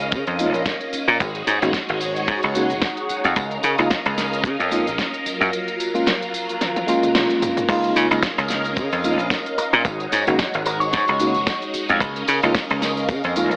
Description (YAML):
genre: nu-disco, nu disco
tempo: 111 BPM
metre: 4/4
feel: swing 55% on 16ths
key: Db major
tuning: A4 = 440 Hz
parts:
  - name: string machine, full ensemble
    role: sustained chords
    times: 0.0-13.6 s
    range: Gb3 to F5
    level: -24 LUFS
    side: equal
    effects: phaser, ensemble chorus, sidechain pumping
  - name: dry thumbed slap bass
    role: bass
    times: 0.0-13.6 s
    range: Gb1 to Db3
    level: -20 LUFS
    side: equal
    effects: none
  - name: pop drum kit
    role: drums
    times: 0.0-13.6 s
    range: cabasa, crash cymbal, hi-hat, snare drum, toms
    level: -25 LUFS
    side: equal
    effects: none
  - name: tambourine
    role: percussion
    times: 0.0-13.6 s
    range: none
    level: -33 LUFS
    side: equal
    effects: none
  - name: kick drum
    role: drums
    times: 0.1-13.2 s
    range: none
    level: -22 LUFS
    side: equal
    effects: none
  - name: tine electric piano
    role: accompaniment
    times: 0.4-13.5 s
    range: Ab3 to Gb4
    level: -23 LUFS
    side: equal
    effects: medium stereo tremolo, sidechain pumping, dub echo
  - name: electric guitar with an envelope filter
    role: melody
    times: 9.6-11.6 s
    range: Bb4 to Db5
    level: -25 LUFS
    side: equal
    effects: harmonic tremolo, tape echo
room: light reverb, studio reverb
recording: AM radio sound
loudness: -18 LUFS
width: side -28 dB against mid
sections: 0.0-7.7 A section; 7.7-13.6 B section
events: drum fill 6.6-7.7; band accent 7.1; drop 7.7-13.6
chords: 0.0 Db69; 1.2 Ab7sus4; 3.4 Db69; 5.3 Gbmaj9; 7.7 Db69; 9.8 Ab7sus4; 12.0 Db69